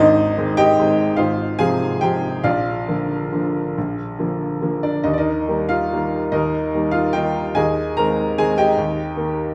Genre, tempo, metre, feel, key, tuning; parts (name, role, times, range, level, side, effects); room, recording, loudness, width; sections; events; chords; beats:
classical, piano waltz; 132-155 BPM; 3/4; rubato; Eb major; A4 = 441 Hz
clear upright piano; solo; 0.0-9.5 s; Ab1 to Bb5; -19 LUFS; equal
wet recital hall reverb, RT60 1.7 s; -20 LUFS; mono
0.0-9.5 A section
0.0 Ab; 1.2 Fm/Ab; 2.4 Bb; 5.1 Eb; 7.6 Ab/Eb; 8.8 Eb
0.37 0.78 | 1.18 1.59 2.01 | 2.44 2.87 3.32 | 3.75 4.18 4.62 | 5.05 5.47 5.91 | 6.32 6.73 7.15 | 7.56 7.96 8.38 | 8.78 9.18